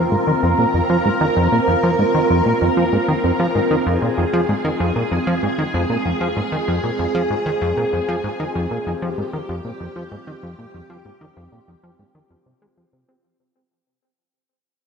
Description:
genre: ambient, sequencer-driven space music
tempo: 96 BPM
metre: 4/4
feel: straight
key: F minor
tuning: A4 = 440 Hz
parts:
  - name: string machine, full ensemble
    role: sustained chords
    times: 0.0-13.3 s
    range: C4 to Bb4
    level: -20 LUFS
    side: right 1 dB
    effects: phaser, ensemble chorus
  - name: plucky analog bass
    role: riff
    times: 0.0-13.2 s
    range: F2 to C4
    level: -20 LUFS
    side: equal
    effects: tape echo
room: wet spring reverb, RT60 2.5 s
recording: echo-heavy mix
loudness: -17 LUFS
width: side -6 dB against mid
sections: 0.0-13.2 A section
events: fade-out 3.2-13.2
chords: 0.0 Fm

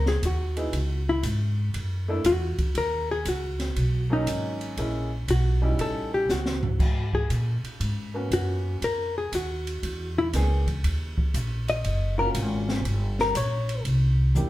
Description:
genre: jazz, small-group swing and bop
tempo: 119 BPM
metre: 4/4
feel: swing 67% on 8ths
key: Eb minor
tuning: A4 = 440 Hz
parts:
  - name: hollow-body jazz guitar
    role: melody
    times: 0.0-13.8 s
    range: D#4 to Eb5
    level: -27 LUFS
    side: left 2 dB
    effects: none
  - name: upright bass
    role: bass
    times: 0.0-14.5 s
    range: Gb1 to Bb2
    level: -26 LUFS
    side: equal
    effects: none
  - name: open jazz drum kit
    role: drums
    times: 0.1-14.5 s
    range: crash cymbal, hi-hat, kick drum, ride cymbal, snare drum, toms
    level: -32 LUFS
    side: equal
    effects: none
  - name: clear upright piano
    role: accompaniment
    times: 0.6-14.5 s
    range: F#3 to G#4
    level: -32 LUFS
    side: right 1 dB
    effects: none
room: wet club reverb, RT60 0.7 s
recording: heard from further back in the room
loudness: -24 LUFS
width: side -15 dB against mid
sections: 0.0-14.5 A section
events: drum fill 6.3-6.8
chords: 0.0 Ebm7; 0.7 Db5; 1.7 Gb7alt; 2.8 Bmaj9; 4.8 Bbm7b5; 5.8 A7#11; 6.8 Abm11; 8.8 Ebmadd9; 9.8 E7#11; 10.8 Ebm9; 12.8 Gdim; 13.9 C7

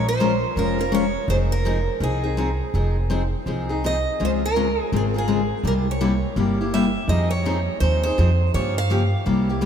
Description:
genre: acoustic string swing (jazz manouche)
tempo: 166 BPM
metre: 4/4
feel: swing 62% on 8ths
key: F minor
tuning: A4 = 440 Hz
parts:
  - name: picked steel-string acoustic guitar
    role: melody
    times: 0.0-9.2 s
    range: Ab4 to F5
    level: -26 LUFS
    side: right 2 dB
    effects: none
  - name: picked steel-string acoustic guitar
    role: accompaniment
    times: 0.0-9.7 s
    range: C3 to Bb4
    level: -23 LUFS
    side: left 3 dB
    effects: none
  - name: upright bass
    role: bass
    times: 0.0-9.7 s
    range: F1 to G2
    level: -23 LUFS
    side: right 1 dB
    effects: none
room: moderate cathedral reverb, RT60 5.6 s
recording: in a vast, echoing space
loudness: -19 LUFS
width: side -8 dB against mid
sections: 0.0-9.7 A section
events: none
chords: 0.0 Bbm7; 1.3 Fm7; 4.2 Dbmaj7; 5.6 C7b9; 7.1 Fm7; 8.5 Gm7b5

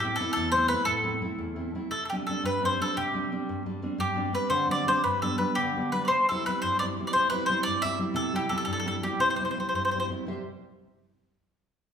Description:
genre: italian folk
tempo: 115 BPM (dotted quarters)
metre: 6/8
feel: rubato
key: C major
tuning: A4 = 438 Hz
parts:
  - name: bowl-back mandolin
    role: melody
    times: 0.0-10.1 s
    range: G4 to E5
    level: -26 LUFS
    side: left 1 dB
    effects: none
  - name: nylon-string guitar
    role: accompaniment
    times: 0.0-10.5 s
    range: E2 to E5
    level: -31 LUFS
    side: equal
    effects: none
room: wet large studio reverb, RT60 1.2 s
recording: band playing live in one room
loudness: -25 LUFS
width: side -7 dB against mid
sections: 0.0-10.3 A section; 10.3-11.3 B section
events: none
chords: 0.0 Am; 1.9 Gsus4; 5.0 G; 6.1 C

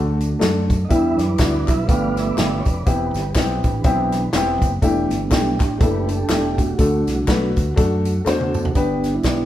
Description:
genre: uptempo gospel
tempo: 122 BPM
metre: 4/4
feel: swing 58% on 8ths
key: G major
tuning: A4 = 441 Hz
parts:
  - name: dark baby grand piano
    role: accompaniment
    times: 0.0-9.5 s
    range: G2 to D5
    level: -22 LUFS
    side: left 2 dB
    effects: none
  - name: mellow tonewheel organ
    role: sustained chords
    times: 0.0-9.5 s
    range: E3 to F5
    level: -23 LUFS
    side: right 3 dB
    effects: slow rotary speaker
  - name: fingered electric bass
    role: bass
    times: 0.0-9.5 s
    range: E1 to F#2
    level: -24 LUFS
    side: equal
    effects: none
  - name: natural country drum kit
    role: drums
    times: 0.2-9.4 s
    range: hi-hat, kick drum, snare drum, toms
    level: -21 LUFS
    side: equal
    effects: none
  - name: tambourine and handclaps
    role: percussion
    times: 0.2-9.4 s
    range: none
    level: -35 LUFS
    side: left 2 dB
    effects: none
room: moderate large studio reverb, RT60 1.2 s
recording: band playing live in one room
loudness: -16 LUFS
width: side -13 dB against mid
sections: 0.0-8.8 A section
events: tonewheel organ solo 0.0-8.8; drum fill 8.3-8.8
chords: 0.0 D; 0.9 Em7; 1.9 G7; 2.9 Cmaj7/E; 4.8 A7sus4/E; 6.8 D; 8.8 G

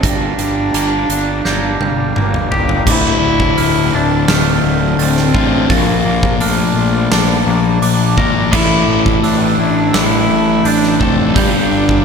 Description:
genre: post-rock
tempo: 85 BPM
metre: 4/4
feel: straight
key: D minor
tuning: A4 = 440 Hz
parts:
  - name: warm cello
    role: melody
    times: 0.0-12.0 s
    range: A3 to E4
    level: -18 LUFS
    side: right 1 dB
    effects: slapback echo, analog delay
  - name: pedal harmonium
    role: sustained chords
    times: 0.0-12.0 s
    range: D4 to Bb5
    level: -26 LUFS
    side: right 2 dB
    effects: none
  - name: glockenspiel with hard plastic mallets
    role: arpeggios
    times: 0.0-12.0 s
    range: D6 to Bb6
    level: -25 LUFS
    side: right 7 dB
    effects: slapback echo, analog delay
  - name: twangy electric guitar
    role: arpeggios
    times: 0.0-12.0 s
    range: D2 to Bb4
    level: -23 LUFS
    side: left 1 dB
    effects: slapback echo, analog delay
  - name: fuzz fingered electric bass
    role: bass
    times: 0.0-12.0 s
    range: D1 to Bb1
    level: -20 LUFS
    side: right 1 dB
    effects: overdrive
  - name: huge arena drum kit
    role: drums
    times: 0.0-12.0 s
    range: crash cymbal, hi-hat, kick drum, snare drum, toms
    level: -17 LUFS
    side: right 1 dB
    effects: none
  - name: sludgy distorted guitar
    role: riff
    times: 2.9-12.0 s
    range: D2 to Bb3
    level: -16 LUFS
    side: left 10 dB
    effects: overdrive
  - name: overdriven electric guitar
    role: riff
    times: 8.5-12.0 s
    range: G2 to A3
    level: -18 LUFS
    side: right 11 dB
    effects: none
room: moderate concert hall reverb, RT60 2.2 s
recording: big arena sound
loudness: -11 LUFS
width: side -6 dB against mid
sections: 0.0-2.9 A section; 2.9-12.0 B section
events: drum fill 1.4-2.9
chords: 0.0 Gm7; 2.9 Dm7; 5.7 Bbmaj7; 8.5 A7sus4; 11.4 Gm7

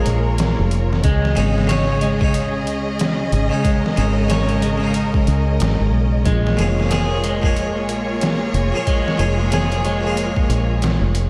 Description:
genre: trip hop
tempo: 92 BPM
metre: 4/4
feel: swing 60% on 16ths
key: Bb minor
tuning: A4 = 438 Hz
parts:
  - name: harpsichord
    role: accompaniment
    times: 0.0-11.3 s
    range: Bb2 to F5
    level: -26 LUFS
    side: equal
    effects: tremolo, vintage 12-bit sampler grit, tape echo
  - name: clear studio string section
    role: sustained chords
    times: 0.0-11.3 s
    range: Db3 to Eb5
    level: -27 LUFS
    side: equal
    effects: none
  - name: electric guitar at the edge of break-up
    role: arpeggios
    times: 0.0-11.1 s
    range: Ab3 to Db5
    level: -28 LUFS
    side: equal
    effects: spring reverb, tape echo
  - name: fingered electric bass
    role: bass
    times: 0.0-11.3 s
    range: F1 to Db2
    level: -22 LUFS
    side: equal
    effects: none
  - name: trip hop sampler-style drum kit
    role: drums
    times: 0.1-11.3 s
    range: hi-hat, kick drum, snare drum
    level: -24 LUFS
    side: equal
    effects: overdrive
room: moderate lush hall reverb, RT60 2.1 s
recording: dreamy mix soaked in reverb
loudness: -18 LUFS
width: mono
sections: 0.0-11.3 A section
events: none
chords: 0.0 Bbm7; 1.0 Dbsus2; 6.3 Bbm7

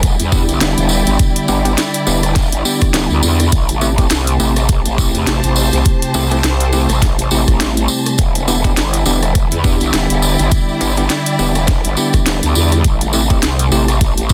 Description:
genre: glitch hop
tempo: 103 BPM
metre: 4/4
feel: swing 57% on 16ths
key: E minor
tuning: A4 = 440 Hz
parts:
  - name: warbly tape-like pad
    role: sustained chords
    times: 0.0-14.3 s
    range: C3 to G4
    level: -24 LUFS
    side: equal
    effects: chorus, built-in reverb, vintage 12-bit sampler grit, sidechain pumping
  - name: growl bass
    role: bass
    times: 0.0-14.3 s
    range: E1 to E2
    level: -19 LUFS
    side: equal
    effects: chorus, overdrive
  - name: drum and bass drum kit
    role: drums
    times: 0.0-14.3 s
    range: hi-hat, rim click, snare drum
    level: -21 LUFS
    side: equal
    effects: overdrive
  - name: electronic kick drum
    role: drums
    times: 0.0-14.3 s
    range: none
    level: -17 LUFS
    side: equal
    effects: overdrive
  - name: tambourine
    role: percussion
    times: 0.0-14.3 s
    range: none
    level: -25 LUFS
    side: equal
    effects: none
  - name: impact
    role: sound effects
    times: 0.0-1.2 s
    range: none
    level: barely audible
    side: none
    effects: none
  - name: warm studio string section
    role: texture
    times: 0.0-14.3 s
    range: E4 to A5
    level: -26 LUFS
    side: equal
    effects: sidechain pumping
  - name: bell-like tine electric piano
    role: stabs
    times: 0.3-14.3 s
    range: A3 to G4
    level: -22 LUFS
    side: equal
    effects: sidechain pumping, tape echo
room: light reverb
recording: dense, heavily limited modern master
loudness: -14 LUFS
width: mono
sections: 0.0-14.3 A section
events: impact 0.0-1.2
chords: 0.0 Em7; 3.5 Am7; 8.2 Em7; 12.8 Am7

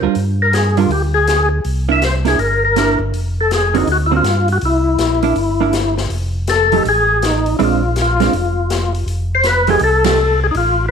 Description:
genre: soul jazz organ trio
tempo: 162 BPM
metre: 4/4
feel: swing 64% on 8ths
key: F major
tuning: A4 = 440 Hz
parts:
  - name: vintage hollow-body jazz guitar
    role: accompaniment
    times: 0.0-10.2 s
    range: D3 to A#4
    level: -19 LUFS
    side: right 10 dB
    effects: none
  - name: mellow tonewheel organ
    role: bass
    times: 0.0-10.9 s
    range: F1 to G2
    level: -18 LUFS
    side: equal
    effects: overdrive, chorus vibrato, slow rotary speaker
  - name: open jazz drum kit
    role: drums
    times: 0.1-10.7 s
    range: hi-hat, ride cymbal, snare drum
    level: -25 LUFS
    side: left 6 dB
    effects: none
  - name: percussive tonewheel organ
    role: melody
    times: 0.4-10.9 s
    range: Eb4 to E5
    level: -15 LUFS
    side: left 3 dB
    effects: slow rotary speaker, overdrive, chorus vibrato
room: moderate plate reverb, RT60 1.1 s, studio reverb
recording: 1960s-style stereo with parts hard left and right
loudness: -13 LUFS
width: side -6 dB against mid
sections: 0.0-6.1 A section; 6.1-10.9 A section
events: band accent 10.0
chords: 0.2 G5; 1.6 C9; 3.1 F5; 3.9 D7alt; 4.6 C9; 6.1 F7; 7.6 Bb9; 9.1 F9

